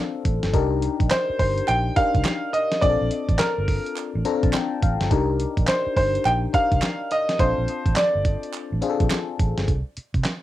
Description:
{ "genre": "R&B, new jack swing", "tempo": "105 BPM", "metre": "4/4", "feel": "swing 63% on 16ths", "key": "unclear", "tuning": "A4 = 440 Hz", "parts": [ { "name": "FM electric piano", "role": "accompaniment", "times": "0.0-9.7 s", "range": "C4 to Bb5", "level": "-27 LUFS", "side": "left 7 dB", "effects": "chorus, phaser, cassette tape" }, { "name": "vintage muted fingered electric bass", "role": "bass", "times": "0.3-10.2 s", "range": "G1 to C3", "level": "-25 LUFS", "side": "right 1 dB", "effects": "none" }, { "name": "dusty soul sampler-style drum kit", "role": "drums", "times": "0.3-10.4 s", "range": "handclaps, hi-hat, kick drum, snare drum", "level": "-23 LUFS", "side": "right 1 dB", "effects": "cassette tape" }, { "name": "clear grand piano", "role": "melody", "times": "1.1-8.5 s", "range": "Bb4 to G5", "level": "-22 LUFS", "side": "right 1 dB", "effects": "cassette tape" }, { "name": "group handclap", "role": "percussion", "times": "1.1-9.3 s", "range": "none", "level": "-36 LUFS", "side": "right 10 dB", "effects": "none" } ], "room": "light reverb", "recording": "home recording on cassette", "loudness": "-20 LUFS", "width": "side -14 dB against mid", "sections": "0.0-9.7 A section", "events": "FM electric piano fill 4.0-5.1", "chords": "0.0 Bbmaj7 (rootless); 0.5 Cm7; 2.8 Bbmaj7; 5.1 Cm7; 7.4 Bbmaj7 (rootless); 9.7 N.C.", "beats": "| 0.54 1.11 1.68 2.25 | 2.82 3.40 3.97 4.54 | 5.11 5.68 6.25 6.82 | 7.39 7.97 8.54 9.11 | 9.68 10.25" }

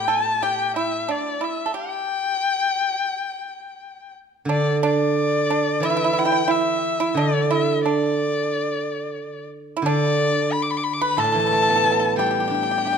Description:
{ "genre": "chinese traditional, Chinese chamber ensemble", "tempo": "90 BPM", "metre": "4/4", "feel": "rubato", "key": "G gong mode", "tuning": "A4 = 440 Hz", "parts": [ { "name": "clear erhu", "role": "melody", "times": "0.0-13.0 s", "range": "D5 to D6", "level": "-23 LUFS", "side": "left 5 dB", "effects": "none" }, { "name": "pipa", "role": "second line", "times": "0.0-13.0 s", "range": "D4 to B4", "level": "-25 LUFS", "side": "right 6 dB", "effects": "none" }, { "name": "steel-string zither", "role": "accompaniment", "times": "0.0-13.0 s", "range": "A2 to G4", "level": "-23 LUFS", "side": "right 3 dB", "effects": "none" } ], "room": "light reverb", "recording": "dark, warm production", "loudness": "-19 LUFS", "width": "side -6 dB against mid", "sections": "0.0-4.5 A section; 4.5-13.0 B section", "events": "none", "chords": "none", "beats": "0.42 1.09 | 1.76 2.43 3.11 3.80 | 4.49 5.16 5.83 6.51 | 7.18 7.84 8.51 9.18 | 9.84 10.51 11.17 11.84 | 12.50" }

